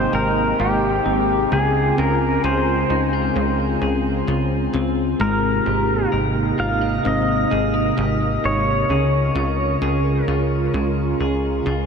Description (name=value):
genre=dream pop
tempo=65 BPM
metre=4/4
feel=straight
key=Db lydian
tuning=A4 = 440 Hz
part: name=pedal steel guitar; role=melody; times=0.0-10.3 s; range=G4 to F5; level=-22 LUFS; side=equal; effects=shimmer reverb, ping-pong delay
part: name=phased analog pad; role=sustained chords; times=0.0-11.9 s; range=C3 to Bb4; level=-24 LUFS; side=right 1 dB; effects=phaser, chorus, shimmer reverb
part: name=semi-hollow electric guitar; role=arpeggios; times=0.0-11.9 s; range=Db3 to Bb4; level=-24 LUFS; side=left 3 dB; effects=wide subtle chorus, ping-pong delay
part: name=plucky analog bass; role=bass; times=0.0-11.9 s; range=Ab1 to Db2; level=-23 LUFS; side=right 1 dB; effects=none
part: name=drifting glass-harmonics texture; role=texture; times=6.4-8.0 s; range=Eb5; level=-32 LUFS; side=equal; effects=chorus, built-in reverb, shimmer reverb, ping-pong delay
room=wet huge ambient reverb, RT60 8.4 s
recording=dreamy mix soaked in reverb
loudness=-17 LUFS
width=side -6 dB against mid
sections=0.0-11.9 A section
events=none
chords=0.0 Abmaj9; 1.5 Dbmaj7; 5.2 Abmaj9; 8.9 Db